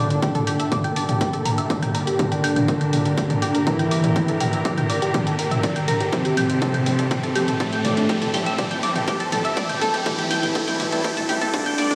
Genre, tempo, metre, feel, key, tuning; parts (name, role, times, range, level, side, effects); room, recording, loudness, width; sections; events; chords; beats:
melodic techno; 122 BPM; 4/4; straight; G dorian; A4 = 437 Hz
soft supersaw; melody; 0.0-11.9 s; A2 to E4; -26 LUFS; equal; sidechain pumping, digital delay
warm studio string section; sustained chords; 0.0-11.9 s; D3 to Bb4; -30 LUFS; equal; sidechain pumping, low-pass filter
tight sequenced synth; arpeggios; 0.0-11.9 s; D4 to G5; -28 LUFS; equal; chorus, phaser, sidechain pumping, delay
fat analog bass; bass; 0.0-11.9 s; F1 to G2; -38 LUFS; equal
riser; sound effects; 2.3-11.9 s; -35 LUFS; equal
techno drum kit; drums; 0.1-11.9 s; hi-hat, toms; -28 LUFS; equal
electronic kick drum; drums; 0.2-11.6 s; -28 LUFS; equal; overdrive, high-pass filter on kick
moderate lush hall reverb, RT60 2.0 s; played on a big sound system in a bare room, stone room reverb, high-pass filter; -22 LUFS; mono
0.0-11.9 A section
build-up 0.0-11.9; drum fill 0.0-11.9; filter sweep on string section 0.0-11.9; filter sweep 0.0-11.9; riser 2.3-11.9
0.0 Gmadd9; 6.1 Am7/G
| 0.23 0.72 1.21 1.70 | 2.19 2.68 3.18 3.67 | 4.16 4.65 5.14 5.63 | 6.13 6.62 7.11 7.60 | 8.09 8.59 9.08 9.57 | 10.06 10.55 11.04 11.54